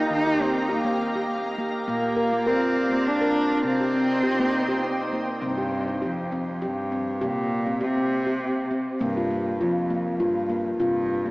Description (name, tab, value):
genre	world meditative, meditative tuned percussion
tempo	101 BPM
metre	3/4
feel	swing 54% on 16ths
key	C minor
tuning	A4 = 440 Hz
part	warm cello	melody	0.0-11.3 s	F2 to Eb4	-25 LUFS	equal	shimmer reverb, analog delay
part	soft additive organ-like pad	sustained chords	0.0-5.4 s	Eb4 to Bb5	-30 LUFS	right 1 dB	ensemble chorus, built-in reverb, shimmer reverb
part	handpan	arpeggios	0.0-11.3 s	Bb2 to Bb4	-26 LUFS	left 1 dB	analog delay
room	wet plate reverb, RT60 2.8 s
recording	echo-heavy mix, small speaker sound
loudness	-22 LUFS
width	side -22 dB against mid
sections	0.0-5.4 A section; 5.4-11.3 B section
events	none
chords	0.0 Eb; 1.9 Bb; 3.7 Cm; 5.4 C5; 9.0 Bb5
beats	| 0.11 0.70 1.29 | 1.88 2.47 3.06 | 3.65 4.25 4.84 | 5.43 6.03 6.62 | 7.22 7.81 8.41 | 9.01 9.60 10.20 | 10.80